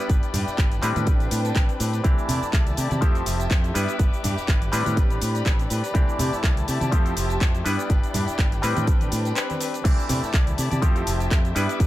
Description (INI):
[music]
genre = filtered disco house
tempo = 123 BPM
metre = 4/4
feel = swing 55% on 16ths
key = A minor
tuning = A4 = 441 Hz
[part]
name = clav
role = accompaniment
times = 0.0-11.9 s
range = E3 to B4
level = -30 LUFS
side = equal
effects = phaser, sidechain pumping, low-pass filter
[part]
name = warm studio violin section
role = sustained chords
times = 0.0-11.9 s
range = C4 to D6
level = -32 LUFS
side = left 1 dB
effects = sidechain pumping, low-pass filter
[part]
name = direct-recorded clean electric guitar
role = riff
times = 0.0-11.9 s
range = A3 to D5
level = -33 LUFS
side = left 6 dB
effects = sidechain pumping, low-pass filter
[part]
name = modern bright fingered electric bass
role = bass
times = 0.1-11.9 s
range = F1 to C3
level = -26 LUFS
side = equal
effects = sidechain pumping, low-pass filter
[part]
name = electronic kick drum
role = drums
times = 0.1-11.9 s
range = none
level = -20 LUFS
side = equal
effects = none
[part]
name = house drum kit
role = drums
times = 0.1-11.9 s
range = cabasa, crash cymbal, handclaps, hi-hat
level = -31 LUFS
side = equal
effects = sidechain pumping on perc, sidechain pumping on hats, sidechain pumping on cymbals
[part]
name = tambourine and congas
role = percussion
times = 0.1-11.9 s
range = none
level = -34 LUFS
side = right 2 dB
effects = sidechain pumping on perc, low-pass filter on perc
[sound]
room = digital ambience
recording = none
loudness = -20 LUFS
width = side -15 dB against mid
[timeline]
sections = 0.0-11.9 A section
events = break 9.4-9.8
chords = 0.0 Em7/G; 0.8 Am11; 2.0 C69; 3.0 Fmaj9; 3.8 Em7/G; 4.7 Am11; 5.9 C69; 6.9 Fmaj9; 7.7 Em7/G; 8.6 Am11; 9.8 C69; 10.8 Fmaj9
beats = | 0.09 0.58 1.07 1.56 | 2.04 2.53 3.02 3.51 | 4.00 4.48 4.97 5.46 | 5.95 6.43 6.92 7.41 | 7.90 8.39 8.87 9.36 | 9.85 10.34 10.83 11.31 | 11.80